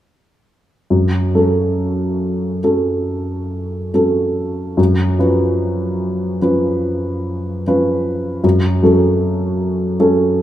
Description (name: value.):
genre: classical, romantic nocturne for solo piano.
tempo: 44-52 BPM (dotted quarters).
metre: 9/8.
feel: rubato.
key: F# minor.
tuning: A4 = 439 Hz.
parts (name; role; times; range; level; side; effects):
warm baby grand piano; solo; 0.9-10.4 s; F#2 to B4; -14 LUFS; equal; none.
room: moderate recital hall reverb, RT60 1.7 s.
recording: none.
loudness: -15 LUFS.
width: side -12 dB against mid.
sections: 0.9-10.4 A section.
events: none.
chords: 0.9 F#m; 4.8 C#7/F#; 8.4 F#m.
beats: | 0.91 2.21 3.51 | 4.78 6.00 7.27 | 8.44 9.60.